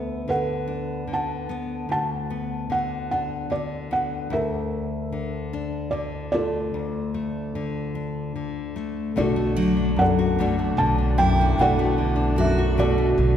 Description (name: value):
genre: acoustic folk-pop ballad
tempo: 74 BPM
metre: 3/4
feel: straight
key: unclear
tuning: A4 = 440 Hz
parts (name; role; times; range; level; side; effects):
- felt-muted upright piano; melody; 0.0-13.4 s; F4 to A5; -26 LUFS; right 2 dB; none
- nylon-string guitar; accompaniment; 0.0-13.4 s; D2 to F#4; -26 LUFS; left 4 dB; none
- muted chamber string section; sustained chords; 9.2-13.4 s; B2 to D4; -31 LUFS; left 1 dB; none
- upright bass; bass; 9.2-13.4 s; B1; -24 LUFS; right 1 dB; none
- picked steel-string acoustic guitar; arpeggios; 9.6-13.4 s; F#3 to F#4; -26 LUFS; right 1 dB; none
room: wet concert hall reverb, RT60 1.9 s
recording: recorded in a church or concert hall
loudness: -22 LUFS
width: side -9 dB against mid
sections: 0.0-9.2 A section; 9.2-13.4 B section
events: none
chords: 0.0 D6; 4.3 Bbmaj7/D; 9.2 Bm7